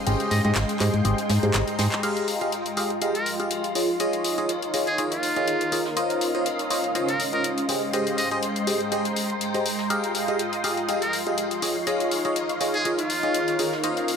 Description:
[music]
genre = piano house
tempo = 122 BPM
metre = 4/4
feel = swing 55% on 16ths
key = unclear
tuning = A4 = 440 Hz
[part]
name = analog string pad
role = sustained chords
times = 0.0-14.2 s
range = Ab3 to C6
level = -30 LUFS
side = right 1 dB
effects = ensemble chorus
[part]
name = granular cloud pad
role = texture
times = 0.0-14.2 s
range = Ab3 to C6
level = -30 LUFS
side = equal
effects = built-in reverb
[part]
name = barking FM electric piano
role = riff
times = 0.1-14.2 s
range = F4 to F5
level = -26 LUFS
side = equal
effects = phaser, low-pass filter, dub echo
[part]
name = solid FM bass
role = bass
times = 0.1-1.9 s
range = Ab1 to Ab2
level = -22 LUFS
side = equal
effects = none
[part]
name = house drum kit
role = drums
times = 0.1-14.2 s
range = crash cymbal, handclaps, hi-hat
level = -30 LUFS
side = left 4 dB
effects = overdrive
[part]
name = jazz brush drum kit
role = drums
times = 0.1-14.2 s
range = ride cymbal, snare drum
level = -39 LUFS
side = left 3 dB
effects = none
[part]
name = trumpet with metal mute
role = melody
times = 0.3-13.7 s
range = F4 to Eb5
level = -29 LUFS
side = right 1 dB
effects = dub echo
[sound]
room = moderate plate reverb, RT60 2.0 s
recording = faint mains hum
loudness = -22 LUFS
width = side -6 dB against mid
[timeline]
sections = 0.0-2.0 A section; 2.0-14.2 B section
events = drum fill 1.5-2.0; band accent 1.9; filter sweep on analog synth pad 2.0-14.2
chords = 0.0 Abmaj7; 3.8 Eb9sus4; 6.0 Dbmaj9; 7.7 Abmaj7; 11.6 Eb9sus4

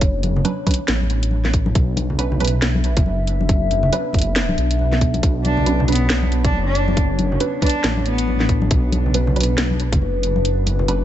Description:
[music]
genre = deep dubstep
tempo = 138 BPM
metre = 4/4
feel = swing 59% on 16ths, half-time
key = B minor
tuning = A4 = 440 Hz
[part]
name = dark analog pad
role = sustained chords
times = 0.0-11.0 s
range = B3 to E5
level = -25 LUFS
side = left 2 dB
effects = chorus, phaser
[part]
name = dark detuned saw bass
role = bass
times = 0.0-11.0 s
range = F#1 to B1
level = -20 LUFS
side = equal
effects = tube saturation
[part]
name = electronic kick drum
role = drums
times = 0.0-10.0 s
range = none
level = -18 LUFS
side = equal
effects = none
[part]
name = garage drum kit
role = drums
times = 0.0-11.0 s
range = hi-hat, snare drum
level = -24 LUFS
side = equal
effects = none
[part]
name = congas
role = percussion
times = 0.2-10.9 s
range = none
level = -26 LUFS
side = left 2 dB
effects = none
[part]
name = filtered dub chord stab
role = stabs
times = 0.4-10.9 s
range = F#3 to B4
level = -27 LUFS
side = right 5 dB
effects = phaser, cassette tape, dub echo
[part]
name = rich cello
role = melody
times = 5.4-8.4 s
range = B3 to D4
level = -25 LUFS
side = equal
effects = dub echo
[sound]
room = light reverb, digital ambience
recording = nothing above 8.0 kHz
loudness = -16 LUFS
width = side -12 dB against mid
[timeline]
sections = 0.0-11.0 A section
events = kick drops out 10.4-11.0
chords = 0.0 Bmadd9

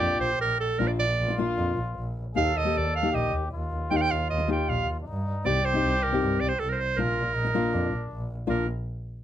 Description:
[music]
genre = klezmer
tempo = 156 BPM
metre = 4/4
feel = straight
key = Bb major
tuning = A4 = 440 Hz
[part]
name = bright clarinet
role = melody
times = 0.0-8.7 s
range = A4 to G5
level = -27 LUFS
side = right 4 dB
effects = none
[part]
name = trombone with straight mute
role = second line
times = 0.0-8.7 s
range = D4 to A4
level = -33 LUFS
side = left 3 dB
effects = none
[part]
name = nylon-string guitar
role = accompaniment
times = 0.0-8.7 s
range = Bb3 to G4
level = -29 LUFS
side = left 4 dB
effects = none
[part]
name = warm double bass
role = bass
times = 0.0-8.7 s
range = Bb1 to G2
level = -29 LUFS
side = equal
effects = none
[sound]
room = light reverb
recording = close, detailed microphones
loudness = -24 LUFS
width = side -11 dB against mid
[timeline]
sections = 0.0-8.5 A section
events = speeding up 0.0-9.2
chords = 0.0 Bb; 2.4 Eb; 5.5 Cm; 7.0 Bb

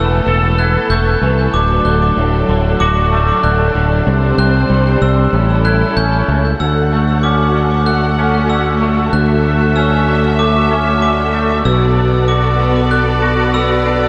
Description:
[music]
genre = post-rock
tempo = 95 BPM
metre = 4/4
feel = straight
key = D mixolydian, D major from 6.6 s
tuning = A4 = 445 Hz
[part]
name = muted studio string section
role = sustained chords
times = 0.0-14.1 s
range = E3 to F#5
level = -21 LUFS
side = equal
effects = none
[part]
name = glockenspiel with brass mallets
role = arpeggios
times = 0.0-14.1 s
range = D6 to G6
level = -22 LUFS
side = equal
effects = tape echo
[part]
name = twangy electric guitar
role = arpeggios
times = 0.0-14.1 s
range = D2 to A4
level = -21 LUFS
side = equal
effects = ensemble chorus, tape echo
[part]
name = growling fingered electric bass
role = bass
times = 0.0-14.1 s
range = D1 to D2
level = -17 LUFS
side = equal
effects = overdrive
[sound]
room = wet lush hall reverb, RT60 2.3 s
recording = dreamy mix soaked in reverb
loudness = -14 LUFS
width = mono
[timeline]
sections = 0.0-6.6 A section; 6.6-14.1 B section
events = none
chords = 0.0 Asus2/E; 1.5 D; 4.1 Csus2; 5.3 A7; 6.6 Dmaj7; 11.7 Bm7

